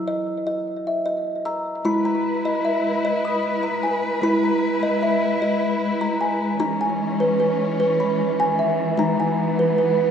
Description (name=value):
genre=world meditative, meditative tuned percussion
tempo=76 BPM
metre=3/4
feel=straight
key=unclear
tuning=A4 = 440 Hz
part: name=kalimba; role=arpeggios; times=0.0-10.1 s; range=F#3 to E6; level=-21 LUFS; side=right 1 dB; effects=tape echo
part: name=dark studio string section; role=sustained chords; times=1.8-10.1 s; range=E3 to B4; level=-23 LUFS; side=left 2 dB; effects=none
room=wet scoring stage reverb, RT60 2.0 s, small room ambience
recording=none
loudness=-19 LUFS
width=side -8 dB against mid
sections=0.0-1.8 A section; 1.8-10.1 B section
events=none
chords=0.0 F#; 1.8 E/G#; 6.6 C#m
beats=0.26 1.05 | 1.84 2.63 3.43 | 4.22 5.01 5.80 | 6.59 7.39 8.18 | 8.97 9.76